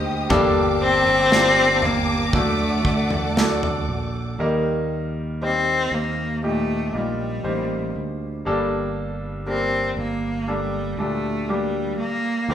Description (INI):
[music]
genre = pop ballad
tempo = 59 BPM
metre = 4/4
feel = straight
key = G minor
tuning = A4 = 441 Hz
[part]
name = clear concert grand piano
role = accompaniment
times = 0.0-12.5 s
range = G2 to C5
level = -25 LUFS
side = left 1 dB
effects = none
[part]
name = warm studio string section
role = sustained chords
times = 0.0-4.4 s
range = Bb3 to Eb6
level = -26 LUFS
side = left 1 dB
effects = none
[part]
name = fingered electric bass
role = bass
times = 0.0-12.5 s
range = G1 to Eb2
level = -28 LUFS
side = right 1 dB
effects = none
[part]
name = modern studio drum kit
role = drums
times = 0.3-3.9 s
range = kick drum, snare drum, toms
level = -24 LUFS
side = right 1 dB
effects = none
[part]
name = rich cello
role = melody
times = 0.8-12.5 s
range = G3 to C4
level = -21 LUFS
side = left 1 dB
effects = none
[sound]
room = wet large studio reverb, RT60 1.2 s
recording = band playing live in one room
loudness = -19 LUFS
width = side -9 dB against mid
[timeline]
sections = 0.0-4.4 A section; 4.4-12.5 B section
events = none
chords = 0.3 Gmadd9; 2.3 D; 4.4 Eb; 8.5 Gmadd9